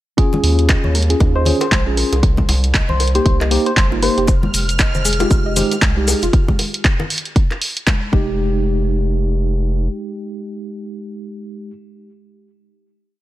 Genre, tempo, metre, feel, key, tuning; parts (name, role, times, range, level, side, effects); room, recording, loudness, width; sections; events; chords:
deep house; 117 BPM; 4/4; swing 59% on 16ths; F minor; A4 = 440 Hz
mellow tine electric piano; stabs; 0.2-11.7 s; Ab3 to Ab4; -22 LUFS; equal; medium stereo tremolo, sidechain pumping, tape echo
electronic kick drum; drums; 0.2-8.2 s; -15 LUFS; equal
punchy analog drum machine; drums; 0.2-8.0 s; handclaps, hi-hat; -21 LUFS; right 1 dB
bongos and congas; percussion; 0.3-8.0 s; -26 LUFS; left 2 dB
round analog bass; bass; 0.4-9.9 s; F1 to Eb2; -18 LUFS; equal; sidechain pumping
soft round pluck; arpeggios; 0.7-8.6 s; Eb4 to Eb5; -26 LUFS; right 2 dB; analog chorus, sidechain pumping, tape echo
soft struck synth lead; melody; 1.4-4.3 s; C5; -24 LUFS; left 2 dB; chorus, phaser, tape echo
maracas; percussion; 4.3-6.3 s; -24 LUFS; left 3 dB
analog string pad; texture; 4.3-6.3 s; F6; -28 LUFS; right 2 dB; ensemble chorus, sidechain pumping
little or no reverb; -14 LUFS; side -15 dB against mid
0.2-8.4 drop; 8.4-12.5 final hit
drop 0.2-8.4
0.2 Eb7sus4; 2.2 Cm7; 4.3 Fm7; 6.3 N.C.; 8.1 Fm7